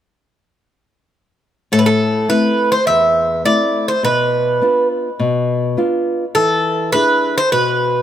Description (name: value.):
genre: greek folk, Greek bouzouki band.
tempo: 104 BPM.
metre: 4/4.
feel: straight.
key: A harmonic minor.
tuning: A4 = 438 Hz.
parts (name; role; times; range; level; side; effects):
Greek bouzouki; melody; 1.7-8.0 s; A4 to E5; -15 LUFS; right 1 dB; none.
nylon-string guitar; accompaniment; 1.7-8.0 s; E2 to G#4; -18 LUFS; left 2 dB; none.
room: moderate plate reverb, RT60 3.9 s.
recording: none.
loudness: -13 LUFS.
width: side -10 dB against mid.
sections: 1.7-8.0 A section.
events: none.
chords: 1.7 Am; 4.0 Bdim; 6.4 E7.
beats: | 1.72 2.30 2.88 3.46 | 4.03 4.61 5.19 5.77 | 6.35 6.93 7.51.